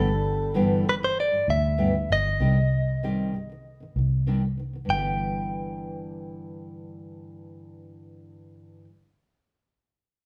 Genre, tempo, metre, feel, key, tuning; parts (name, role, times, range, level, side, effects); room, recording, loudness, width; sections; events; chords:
acoustic pop; 97 BPM; 4/4; straight; G major; A4 = 441 Hz
direct-recorded clean electric guitar; melody; 0.0-8.8 s; A4 to G5; -29 LUFS; equal
nylon-string guitar; accompaniment; 0.0-8.9 s; G2 to G4; -31 LUFS; equal
picked steel-string acoustic guitar; arpeggios; 0.0-0.5 s; G3 to D4; -40 LUFS; equal
vintage muted fingered electric bass; bass; 0.0-8.8 s; G1 to D2; -28 LUFS; equal
wet large studio reverb, RT60 0.9 s; band playing live in one room; -25 LUFS; mono
0.0-4.9 A section; 4.9-7.4 B section
0.0 G6; 2.4 Cmadd9; 4.9 G6